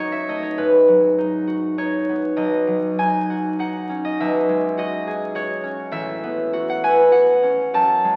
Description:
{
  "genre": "classical, solo harp piece",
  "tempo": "101 BPM",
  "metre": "3/4",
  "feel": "rubato",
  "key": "unclear",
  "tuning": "A4 = 440 Hz",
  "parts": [
    { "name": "concert harp", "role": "solo", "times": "0.0-8.2 s", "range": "A1 to A5", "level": "-20 LUFS", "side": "equal", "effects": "none" }
  ],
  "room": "wet scoring stage reverb, RT60 1.6 s",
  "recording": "very old 78 rpm record, vinyl crackle",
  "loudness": "-20 LUFS",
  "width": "mono",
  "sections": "0.0-8.2 A section",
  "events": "none",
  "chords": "0.0 F#m6; 0.6 G#m7; 2.4 Badd9; 4.2 E69/B; 6.0 A69"
}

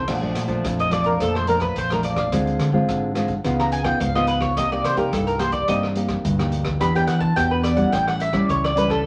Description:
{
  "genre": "samba and choro",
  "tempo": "107 BPM",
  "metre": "4/4",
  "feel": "straight",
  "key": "unclear",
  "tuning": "A4 = 440 Hz",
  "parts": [
    { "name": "mandolin", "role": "second line", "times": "0.0-9.1 s", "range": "A4 to B5", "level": "-24 LUFS", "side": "equal", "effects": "none" },
    { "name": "nylon-string guitar", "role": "accompaniment", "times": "0.0-9.0 s", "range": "F2 to G4", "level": "-25 LUFS", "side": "equal", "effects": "none" },
    { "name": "picked electric bass", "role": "bass", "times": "0.0-9.1 s", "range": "A1 to E3", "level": "-28 LUFS", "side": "equal", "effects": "none" },
    { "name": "vintage drum kit", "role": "drums", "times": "0.1-9.0 s", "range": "crash cymbal, hi-hat, kick drum, rim click", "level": "-33 LUFS", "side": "equal", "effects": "none" }
  ],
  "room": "wet studio reverb, RT60 0.5 s",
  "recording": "none",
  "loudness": "-21 LUFS",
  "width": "mono",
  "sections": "0.1-9.1 A section",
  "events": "mandolin solo 0.1-9.1",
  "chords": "0.1 Bbmaj7; 2.3 Dm7b5; 3.4 Db9; 4.6 Cm7; 6.8 Em7; 7.9 A7"
}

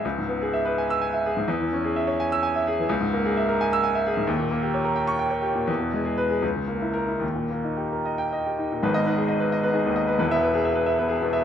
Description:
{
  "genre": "classical, romantic character piece for solo piano",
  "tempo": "71-91 BPM (dotted quarters)",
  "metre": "6/8",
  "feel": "rubato",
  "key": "G# minor",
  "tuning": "A4 = 439 Hz",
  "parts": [
    { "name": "clear grand piano", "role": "solo", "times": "0.0-11.4 s", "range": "E1 to E6", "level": "-22 LUFS", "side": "equal", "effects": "none" }
  ],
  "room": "moderate recital hall reverb, RT60 1.4 s",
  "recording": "minimal, uncompressed stereo recording",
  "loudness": "-22 LUFS",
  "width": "side -9 dB against mid",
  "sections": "0.0-8.8 A section; 8.8-11.4 B section",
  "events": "none",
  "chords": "0.0 C#m7; 1.5 C#m/E; 2.9 A#m7b5/C#; 4.3 D#7; 5.7 E; 6.4 A#dim/C#; 7.2 D#; 8.8 G#m; 10.2 E"
}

